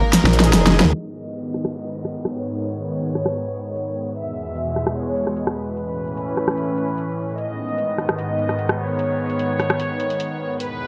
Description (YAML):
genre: heavy wobble dubstep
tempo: 149 BPM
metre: 4/4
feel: half-time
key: G# minor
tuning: A4 = 440 Hz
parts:
  - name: warm studio violin section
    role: melody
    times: 0.0-10.9 s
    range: A#3 to E5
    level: -29 LUFS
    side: equal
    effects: dub echo
  - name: supersaw pad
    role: sustained chords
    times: 0.0-10.9 s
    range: E2 to D#4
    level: -28 LUFS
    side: equal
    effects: none
  - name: dubstep drum kit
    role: drums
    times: 0.1-10.7 s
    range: hi-hat, rim click, snare drum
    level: -21 LUFS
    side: equal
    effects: studio reverb
  - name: growl bass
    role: bass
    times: 0.2-0.9 s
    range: F#1 to D#2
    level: -19 LUFS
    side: equal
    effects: chorus, overdrive
  - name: mellow brass ensemble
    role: stabs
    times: 0.4-0.9 s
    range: G#3 to G#4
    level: -28 LUFS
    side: equal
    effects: dub echo
  - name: downlifter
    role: sound effects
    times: 1.2-4.2 s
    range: none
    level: -46 LUFS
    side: equal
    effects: none
room: light reverb, digital ambience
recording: low-pass filter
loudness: -22 LUFS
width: mono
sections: 0.9-10.9 A section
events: drum fill 0.1-0.9; filter sweep 0.9-10.9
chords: 0.0 G#sus2; 0.9 G#m; 4.2 E; 5.8 A; 7.4 G#m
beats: 0.13 0.54 | 0.94 1.34 1.74 2.15 | 2.55 2.95 3.35 3.76 | 4.16 4.56 4.96 5.37 | 5.77 6.17 6.58 6.98 | 7.38 7.78 8.19 8.59 | 8.99 9.39 9.80 10.20 | 10.60